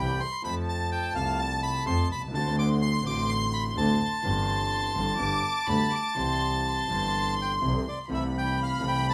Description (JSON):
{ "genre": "tango", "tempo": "126 BPM", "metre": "4/4", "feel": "rubato", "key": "C major", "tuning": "A4 = 440 Hz", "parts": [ { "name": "bandoneon", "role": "melody", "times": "0.0-9.1 s", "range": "D5 to D6", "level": "-32 LUFS", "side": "equal", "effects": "none" }, { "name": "warm studio violin section", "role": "second line", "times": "0.0-9.1 s", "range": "A5 to D6", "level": "-35 LUFS", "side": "equal", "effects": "none" }, { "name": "dark concert grand piano", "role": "accompaniment", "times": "0.0-9.1 s", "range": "G1 to A4", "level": "-35 LUFS", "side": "equal", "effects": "none" }, { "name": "clear double bass", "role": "bass", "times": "0.0-9.1 s", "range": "G1 to F2", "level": "-32 LUFS", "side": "equal", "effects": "none" } ], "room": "moderate studio ambience, RT60 0.5 s", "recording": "none", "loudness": "-27 LUFS", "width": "mono", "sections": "0.0-9.1 A section", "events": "none", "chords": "0.4 F; 2.3 D7; 4.2 C/G; 5.2 G; 6.2 C; 8.1 Am/C", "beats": "| 0.44 0.91 1.39 1.86 | 2.33 2.81 3.29 3.77 | 4.24 4.72 5.20 5.68 | 6.17 6.66 7.14 7.62 | 8.10 8.57 9.05" }